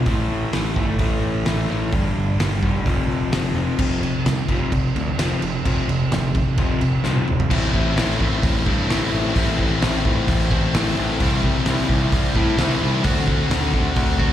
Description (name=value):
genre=quiet-loud alternative rock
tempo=130 BPM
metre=4/4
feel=straight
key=A minor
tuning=A4 = 440 Hz
part: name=overdriven electric guitar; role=riff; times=0.0-14.3 s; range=F2 to F#4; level=-24 LUFS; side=left 7 dB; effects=slapback echo
part: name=thick fuzz guitar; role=riff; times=0.0-7.5 s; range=F2 to A3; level=-26 LUFS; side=right 9 dB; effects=distortion
part: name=growling picked electric bass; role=bass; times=0.0-14.3 s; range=F1 to A2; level=-23 LUFS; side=right 1 dB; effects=overdrive
part: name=loose indie drum kit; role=drums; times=0.1-14.3 s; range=crash cymbal, hi-hat, kick drum, snare drum, toms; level=-22 LUFS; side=equal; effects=none
part: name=high-gain distorted guitar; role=riff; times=7.5-14.3 s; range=A2 to F#4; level=-24 LUFS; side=right 2 dB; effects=distortion
room=little or no reverb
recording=live gig heard through the venue's PA, recital hall reverb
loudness=-18 LUFS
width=side -11 dB against mid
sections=0.0-3.8 A section; 3.8-7.5 B section; 7.5-14.3 C section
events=drum fill 7.0-7.5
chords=0.1 A5; 1.9 G5; 2.9 F5; 7.5 Am; 11.2 C; 13.0 D7